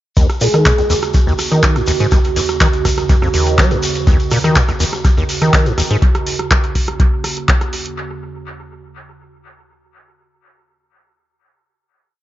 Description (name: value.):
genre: acid house.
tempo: 123 BPM.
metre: 4/4.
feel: straight.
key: Eb minor.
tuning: A4 = 445 Hz.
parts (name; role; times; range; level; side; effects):
warbly tape-like pad; sustained chords; 0.2-7.9 s; Eb2 to Gb4; -23 LUFS; right 5 dB; chorus, built-in reverb, sidechain pumping.
deep acid bass; riff; 0.2-6.0 s; Eb2 to Gb3; -17 LUFS; equal; overdrive, analog chorus, sidechain pumping, dub echo.
electro analog drum machine; drums; 0.2-8.0 s; handclaps, hi-hat, rim click; -20 LUFS; equal; dub echo.
electronic kick drum; drums; 0.2-7.6 s; none; -14 LUFS; equal; none.
shekere; percussion; 0.2-6.0 s; none; -26 LUFS; left 3 dB; dub echo.
airy dreamy lead; melody; 0.4-1.1 s; Ab4; -20 LUFS; left 1 dB; chorus, dub echo.
room: light reverb.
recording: echo-heavy mix, nothing above 7.5 kHz.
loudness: -12 LUFS.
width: side -14 dB against mid.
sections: 0.2-8.0 drop.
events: drop 0.2-8.0.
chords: 0.2 Ebm7.